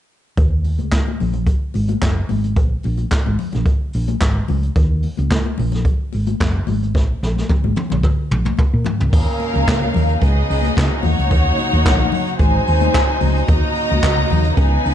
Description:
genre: disco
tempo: 110 BPM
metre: 4/4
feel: straight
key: Eb minor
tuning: A4 = 439 Hz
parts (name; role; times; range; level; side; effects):
- hollow-body short-scale fingered electric bass; bass; 0.4-14.9 s; Gb1 to Db3; -18 LUFS; equal; none
- jazz brush drum kit; drums; 0.4-14.9 s; crash cymbal, handclaps, hi-hat, kick drum, snare drum, toms; -18 LUFS; equal; none
- congas; percussion; 0.6-14.7 s; none; -27 LUFS; left 9 dB; none
- clear studio string section; second line; 9.1-14.9 s; Cb4 to Bb5; -20 LUFS; equal; none
- clear studio string section; sustained chords; 9.1-14.9 s; C3 to Eb4; -25 LUFS; equal; none
room: light reverb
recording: dark, warm production, nothing above 11.0 kHz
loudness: -15 LUFS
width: side -10 dB against mid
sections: 0.4-9.1 A section; 9.1-14.9 B section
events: drum fill 6.9-9.1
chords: 0.4 Ebm7; 2.6 Bb7(no3); 4.8 Ebm7; 6.9 N.C.; 9.1 Ebm7; 10.2 Db9sus4; 11.0 Ebm7; 12.4 Ab7; 13.5 Ebm7

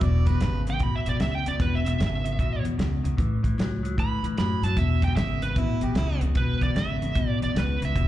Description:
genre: electric blues shuffle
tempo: 151 BPM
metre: 4/4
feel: swing 64% on 8ths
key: E mixolydian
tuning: A4 = 438 Hz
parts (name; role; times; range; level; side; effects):
- warm harmonica; second line; 0.0-0.6, 5.6-6.2 s; E4 to D5; -35 LUFS; right 5 dB; overdrive, slapback echo
- clean electric guitar; riff; 0.0-8.1 s; E2 to F#3; -28 LUFS; left 2 dB; slapback echo
- upright bass; bass; 0.0-8.1 s; E1 to F#2; -27 LUFS; equal; none
- warm soul drum kit; drums; 0.0-8.1 s; hi-hat, kick drum, snare drum; -27 LUFS; equal; none
- smooth overdriven lead guitar; melody; 0.7-8.1 s; B4 to B5; -31 LUFS; right 5 dB; slapback echo
room: studio ambience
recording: live gig heard through the venue's PA, club reverb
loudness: -22 LUFS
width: side -14 dB against mid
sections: 0.0-8.1 A section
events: none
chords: 0.0 E; 3.2 A; 4.8 E

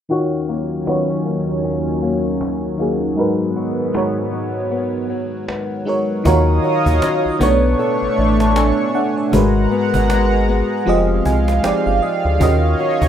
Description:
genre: contemporary R&B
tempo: 78 BPM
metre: 4/4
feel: swing 58% on 16ths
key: Eb minor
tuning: A4 = 440 Hz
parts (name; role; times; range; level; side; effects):
- FM electric piano with soft pad layer; accompaniment; 0.1-13.1 s; Ab2 to A5; -19 LUFS; right 1 dB; chorus
- chorused pulse-width pad; sustained chords; 0.3-13.1 s; Eb2 to Eb6; -21 LUFS; equal; none
- flamenco guitar; arpeggios; 0.1-13.1 s; Ab2 to A4; -24 LUFS; left 7 dB; digital delay
- cajon; drums; 0.9-13.1 s; none; -25 LUFS; equal; none
- rubbery square bass; bass; 6.3-13.1 s; F1 to Eb2; -18 LUFS; equal; none
- large celesta; texture; 6.3-9.7 s; Fb5 to Bb5; -28 LUFS; right 3 dB; digital delay
room: light reverb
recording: rough home demo mix, low-pass filter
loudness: -15 LUFS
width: side -9 dB against mid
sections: 0.1-6.3 A section; 6.3-13.1 B section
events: filter sweep 0.1-6.3; kick muted 3.2-6.3; FM electric piano fill 10.9-12.4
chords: 0.1 Ebm7; 3.2 Abm7; 6.3 Ebm9; 7.4 Bm9; 9.3 Abm9; 10.9 Fm9; 12.4 Ebm9

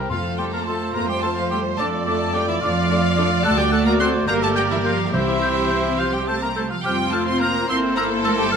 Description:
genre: quick classical-period movement for symphony orchestra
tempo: 71 BPM (dotted quarters)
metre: 6/8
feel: straight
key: F major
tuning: A4 = 441 Hz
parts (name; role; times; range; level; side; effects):
- rich studio violin section; second line; 0.0-8.6 s; C4 to D5; -27 LUFS; left 3 dB; none
- warm cor anglais; second line; 0.0-8.6 s; E4 to C5; -27 LUFS; right 3 dB; none
- warm studio violin section; melody; 0.1-8.6 s; E5 to C6; -27 LUFS; left 2 dB; none
- mellow hollow concert flute; second line; 0.1-8.6 s; C6 to G6; -29 LUFS; left 2 dB; none
- warm clarinet; second line; 0.1-8.6 s; A4 to C5; -34 LUFS; left 1 dB; none
- warm studio viola section; accompaniment; 0.1-8.6 s; A3 to G4; -27 LUFS; equal; none
- dark French horn section; sustained chords; 0.1-8.6 s; A3 to G4; -28 LUFS; left 4 dB; none
- mellow trumpet; stabs; 0.1-8.6 s; C5 to D5; -28 LUFS; right 2 dB; none
- warm studio cello section; bass; 0.1-8.6 s; E3 to C4; -26 LUFS; right 4 dB; none
- warm studio double bass section; bass; 0.1-8.6 s; F1 to F2; -28 LUFS; right 3 dB; none
- timpani; percussion; 0.1-0.9, 5.1-6.0 s; F2 to C3; -29 LUFS; left 1 dB; none
room: moderate concert hall reverb, RT60 2.1 s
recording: none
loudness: -18 LUFS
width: side -6 dB against mid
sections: 0.1-8.6 A section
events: none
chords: 0.1 F; 1.8 Dm/F; 3.5 D7; 4.3 Gm7; 5.1 C; 6.9 F; 7.7 C7/G

